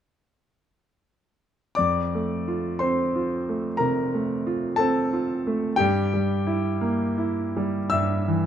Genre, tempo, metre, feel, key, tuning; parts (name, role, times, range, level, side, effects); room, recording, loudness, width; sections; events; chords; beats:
classical, romantic nocturne for solo piano; 51-64 BPM; 4/4; rubato; F major; A4 = 441 Hz
clear concert grand piano; solo; 1.8-8.5 s; F2 to E6; -22 LUFS; equal
light reverb; close, detailed microphones; -22 LUFS; side -9 dB against mid
1.8-8.5 A section
1.8 F; 5.8 Edim/G
| 1.79 2.83 3.81 4.80 | 5.80 6.83 7.94